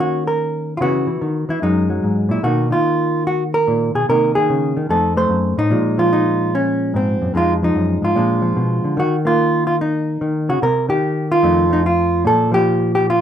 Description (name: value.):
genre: solo jazz.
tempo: 147 BPM.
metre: 4/4.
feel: swing 66% on 8ths.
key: Bb minor.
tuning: A4 = 437 Hz.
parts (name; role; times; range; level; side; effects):
hollow-body jazz guitar; solo; 0.0-13.2 s; F2 to C5; -15 LUFS; equal; none.
room: moderate small room reverb, RT60 0.5 s.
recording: rough home demo mix.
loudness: -15 LUFS.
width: side -9 dB against mid.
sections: 0.0-9.0 A section; 9.0-13.2 B section.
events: none.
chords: 0.0 Eb7(no3); 0.8 Dbm9; 1.6 Gb69; 2.4 Bmaj7; 4.1 Bbm11/C; 4.9 F7b9; 5.7 Bbm11; 7.4 Fm7; 8.2 Bb7b9; 9.0 Eb5; 10.6 Cm; 11.4 F7; 12.2 Bb5.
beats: 0.40 | 0.81 1.22 1.63 2.04 | 2.44 2.85 3.26 3.67 | 4.08 4.49 4.90 5.31 | 5.72 6.12 6.53 6.94 | 7.35 7.76 8.17 8.58 | 8.98 9.39 9.80 10.21 | 10.62 11.02 11.43 11.84 | 12.25 12.65 13.06.